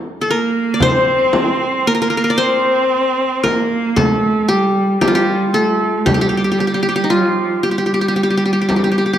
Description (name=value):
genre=Turkish makam ensemble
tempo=114 BPM (eighths)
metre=10/8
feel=straight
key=G makam ussak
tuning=A4 = 440 Hz
part: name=qanun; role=melody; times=0.2-9.2 s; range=Eb4 to D5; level=-16 LUFS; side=left 2 dB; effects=none
part: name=rich cello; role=second line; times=0.3-9.2 s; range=F3 to C4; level=-18 LUFS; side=right 2 dB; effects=none
part: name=darbuka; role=percussion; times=0.3-8.9 s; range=none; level=-25 LUFS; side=right 3 dB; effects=none
part: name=frame drum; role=percussion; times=0.8-8.9 s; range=none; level=-22 LUFS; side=left 2 dB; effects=none
room=wet recital hall reverb, RT60 1.3 s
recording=none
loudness=-13 LUFS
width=side -10 dB against mid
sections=0.8-9.2 A section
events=none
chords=none